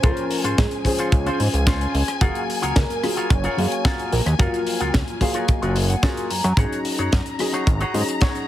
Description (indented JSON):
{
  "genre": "nu-disco, nu disco",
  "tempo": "110 BPM",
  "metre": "4/4",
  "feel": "straight",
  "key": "unclear",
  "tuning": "A4 = 441 Hz",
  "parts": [
    { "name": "wide unison lead", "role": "melody", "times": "0.0-5.4 s", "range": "F4 to Db5", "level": "-30 LUFS", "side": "equal", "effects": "analog chorus, ping-pong delay" },
    { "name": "dark concert grand piano", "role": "accompaniment", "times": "0.0-8.5 s", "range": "F3 to F5", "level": "-26 LUFS", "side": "left 1 dB", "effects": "none" },
    { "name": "warm studio string section", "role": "sustained chords", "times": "0.0-8.5 s", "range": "Ab5 to Bb5", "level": "-31 LUFS", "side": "left 4 dB", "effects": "vintage 12-bit sampler grit, sidechain pumping" },
    { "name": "electric guitar with an envelope filter", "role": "riff", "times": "0.0-8.5 s", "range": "Db4 to Bb5", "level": "-28 LUFS", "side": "equal", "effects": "lush chorus" },
    { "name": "fat analog bass", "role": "bass", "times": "0.0-8.0 s", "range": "Gb1 to Ab2", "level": "-22 LUFS", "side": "equal", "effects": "sidechain pumping" },
    { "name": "kick drum", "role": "drums", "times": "0.0-8.3 s", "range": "none", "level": "-20 LUFS", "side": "equal", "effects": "none" },
    { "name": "tight funk drum kit", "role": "drums", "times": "0.0-8.5 s", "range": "hi-hat, rim click, snare drum", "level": "-28 LUFS", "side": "left 1 dB", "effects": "none" }
  ],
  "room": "light reverb, studio reverb",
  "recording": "heavily compressed radio sound",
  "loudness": "-18 LUFS",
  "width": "side -13 dB against mid",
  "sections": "0.0-8.5 A section",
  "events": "clean electric guitar fill 4.9-6.6",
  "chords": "0.0 Dbmaj7; 2.2 Gbmaj9; 6.6 Ab7sus4"
}